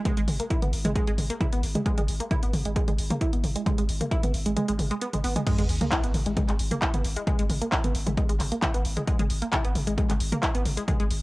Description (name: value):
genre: driving peak-time techno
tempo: 133 BPM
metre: 4/4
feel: straight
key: G# minor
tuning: A4 = 440 Hz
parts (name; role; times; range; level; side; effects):
- tight sequenced synth; riff; 0.1-11.0 s; G#3 to E4; -30 LUFS; right 1 dB; chorus, cassette tape, sidechain pumping, tape echo
- electronic kick drum; drums; 0.1-11.0 s; none; -26 LUFS; equal; cassette tape
- punchy analog drum machine; drums; 0.1-11.2 s; crash cymbal, handclaps, hi-hat, toms; -30 LUFS; equal; cassette tape
- saturated sub bass; bass; 0.2-11.2 s; G#1; -30 LUFS; equal; overdrive, sidechain pumping, low-pass filter
- sub drop; sound effects; 5.5-7.3 s; none; -32 LUFS; equal; none
room: light reverb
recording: home recording on cassette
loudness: -23 LUFS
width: side -21 dB against mid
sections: 0.0-5.5 A section; 5.5-11.2 B section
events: kick drops out 4.6-5.5; drop 5.5-11.2; impact 5.5-7.3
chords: none